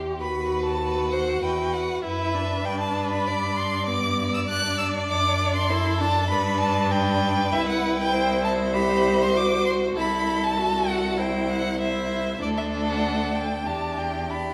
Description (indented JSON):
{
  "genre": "quick classical-period movement for string quartet",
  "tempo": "98 BPM",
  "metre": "4/4",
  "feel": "straight",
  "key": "unclear",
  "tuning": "A4 = 440 Hz",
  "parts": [
    { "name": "clear violin", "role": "second line", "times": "0.0-14.5 s", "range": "G4 to D5", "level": "-31 LUFS", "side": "equal", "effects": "none" },
    { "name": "rich viola", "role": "accompaniment", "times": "0.0-14.5 s", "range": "B3 to G4", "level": "-30 LUFS", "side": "equal", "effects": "none" },
    { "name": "rich cello", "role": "bass", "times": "0.0-14.5 s", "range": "C2 to G2", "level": "-30 LUFS", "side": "equal", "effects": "none" },
    { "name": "rich violin", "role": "melody", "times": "0.2-14.5 s", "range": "D5 to F#6", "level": "-29 LUFS", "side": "equal", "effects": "none" }
  ],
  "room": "moderate recital hall reverb, RT60 1.3 s",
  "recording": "none",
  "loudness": "-24 LUFS",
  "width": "mono",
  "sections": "0.0-14.5 A section",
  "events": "none",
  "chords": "0.2 B/D#; 1.4 E5; 2.6 G; 5.1 D/F#; 6.3 G; 7.5 C; 10.0 Am/C; 12.4 D5; 13.7 Em7"
}